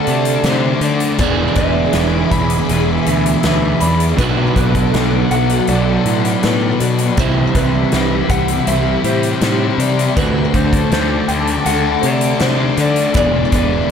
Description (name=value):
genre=rock, shoegaze and dream pop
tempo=80 BPM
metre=4/4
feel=straight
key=unclear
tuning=A4 = 439 Hz
part: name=mellow electric guitar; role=melody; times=0.0-13.9 s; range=B4 to B5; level=-23 LUFS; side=right 1 dB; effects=digital delay
part: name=phased string machine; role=sustained chords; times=0.0-13.9 s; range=G#3 to D6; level=-25 LUFS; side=equal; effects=ensemble chorus, phaser
part: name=picked twelve-string acoustic guitar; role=arpeggios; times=0.0-13.9 s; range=F#4 to D5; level=-24 LUFS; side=left 4 dB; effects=wide subtle chorus, digital delay
part: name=overdriven semi-hollow guitar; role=riff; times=0.0-13.9 s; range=B2 to G#4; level=-20 LUFS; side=right 9 dB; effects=reverse reverb
part: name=thick fuzz guitar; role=riff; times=0.0-13.9 s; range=E2 to D4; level=-19 LUFS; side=left 8 dB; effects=distortion, wide subtle chorus
part: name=fuzz picked electric bass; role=bass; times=0.1-13.9 s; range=E1 to D3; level=-19 LUFS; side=equal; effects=overdrive
part: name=huge arena drum kit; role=drums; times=0.1-13.7 s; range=hi-hat, kick drum, snare drum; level=-20 LUFS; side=left 1 dB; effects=none
room=light reverb, small room ambience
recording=none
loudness=-13 LUFS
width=side -7 dB against mid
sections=0.0-13.9 A section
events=none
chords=0.0 D7; 1.2 E7; 4.2 Bm7; 7.2 Cmaj7; 10.2 D7; 13.2 E7